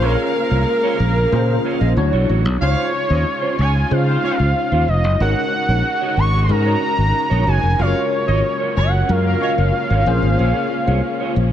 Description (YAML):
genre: pop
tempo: 93 BPM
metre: 4/4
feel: straight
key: Db major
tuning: A4 = 441 Hz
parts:
  - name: fat analog lead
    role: melody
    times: 0.0-11.5 s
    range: Bb4 to Db6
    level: -21 LUFS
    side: equal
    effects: ping-pong delay
  - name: tine electric piano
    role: accompaniment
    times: 0.0-11.5 s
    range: F#3 to C#5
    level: -23 LUFS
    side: left 3 dB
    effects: medium stereo tremolo, ensemble chorus
  - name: warm studio string section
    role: sustained chords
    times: 0.0-11.5 s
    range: Db3 to F5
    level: -29 LUFS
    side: right 2 dB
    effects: none
  - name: mellow electric guitar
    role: riff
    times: 0.0-11.4 s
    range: Db4 to Eb5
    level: -28 LUFS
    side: right 7 dB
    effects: ensemble chorus
  - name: fingered electric bass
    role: bass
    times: 0.0-11.5 s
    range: F1 to Db3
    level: -17 LUFS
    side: equal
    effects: none
  - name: warm horn section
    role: second line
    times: 2.6-9.5 s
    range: Bb3 to F5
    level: -27 LUFS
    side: equal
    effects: none
room: light reverb, studio reverb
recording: none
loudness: -15 LUFS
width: side -10 dB against mid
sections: 0.0-11.5 A section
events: none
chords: 0.0 Bbm7; 2.0 Dmaj7; 2.6 Dbmaj7; 5.2 Ab7sus4; 7.8 Gbmaj7; 10.1 Bbm7